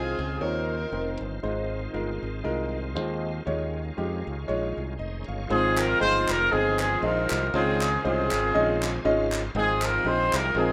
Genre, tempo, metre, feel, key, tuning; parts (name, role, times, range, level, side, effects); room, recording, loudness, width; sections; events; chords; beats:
uptempo gospel; 118 BPM; 4/4; swing 56% on 8ths; Ab major; A4 = 443 Hz
overdriven slide guitar; melody; 0.0-1.2 s; Ab4 to Bb4; -39 LUFS; equal
warm horn section; melody; 0.0-1.4, 5.5-10.7 s; C4 to C5; -27 LUFS; equal
clear grand piano; accompaniment; 0.0-10.7 s; Ab2 to F5; -31 LUFS; equal
bright tonewheel organ; sustained chords; 0.0-10.7 s; Db3 to Ab5; -39 LUFS; equal; slow rotary speaker, overdrive, chorus vibrato
modern bright fingered electric bass; bass; 0.0-10.7 s; F1 to F2; -34 LUFS; equal
group handclap; percussion; 5.8-10.4 s; -36 LUFS; equal
moderate studio reverb, RT60 0.6 s; rough home demo mix; -26 LUFS; mono
0.0-5.5 A section; 5.5-10.7 B section
tonewheel organ fill 8.5-9.6
0.0 Dbmaj9; 1.4 Ab6; 3.5 Eb9sus4; 7.5 Ab6
0.41 0.92 | 1.43 1.94 2.45 2.96 | 3.46 3.97 4.48 4.99 | 5.50 6.01 6.51 7.02 | 7.53 8.03 8.54 9.04 | 9.55 10.06 10.56